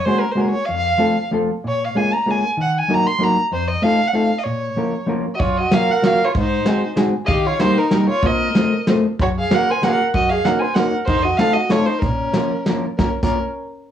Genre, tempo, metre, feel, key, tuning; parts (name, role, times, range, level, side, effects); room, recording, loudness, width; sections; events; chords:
musette waltz; 191 BPM; 3/4; rubato; Bb minor; A4 = 440 Hz
rich violin; melody; 0.0-13.4 s; Bb4 to C6; -20 LUFS; right 1 dB
hollow-body jazz guitar; accompaniment; 0.1-13.4 s; F2 to C5; -20 LUFS; left 1 dB
dark violin; second line; 5.4-13.4 s; Db4 to C5; -23 LUFS; right 2 dB
soft brush drum kit; drums; 5.4-13.3 s; crash cymbal, hi-hat, kick drum, snare drum; -21 LUFS; equal
moderate small room reverb, RT60 0.5 s; worn, warbling old tape, cassette tape, warbly pitch drift, small room ambience; -16 LUFS; side -9 dB against mid
0.0-13.0 A section
0.0 Gbadd9; 0.7 F; 1.6 Bbm7; 2.6 Ebm; 3.5 F7; 4.5 Bbm; 5.4 Gbmaj7; 6.4 Ab7; 7.3 Eb; 8.2 Fsus4; 8.6 F; 9.2 Gbadd9; 10.2 Ebm7/Gb; 11.1 F7; 12.0 Bbm